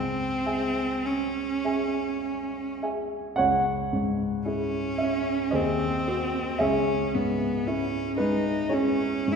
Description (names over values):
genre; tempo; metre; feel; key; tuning
classical, romantic duo for cello and grand piano; 50-58 BPM; 3/4; rubato; C# minor; A4 = 437 Hz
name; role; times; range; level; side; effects
rich cello; melody; 0.0-9.4 s; B3 to E4; -28 LUFS; right 1 dB; none
warm baby grand piano; accompaniment; 0.0-9.4 s; C#2 to G#5; -26 LUFS; equal; none
room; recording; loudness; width
wet concert hall reverb, RT60 1.9 s; heard from further back in the room; -24 LUFS; side -6 dB against mid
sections
0.0-3.4 A section; 3.4-9.4 B section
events
none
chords
0.0 C#m; 5.5 G#7/D#; 6.6 C#m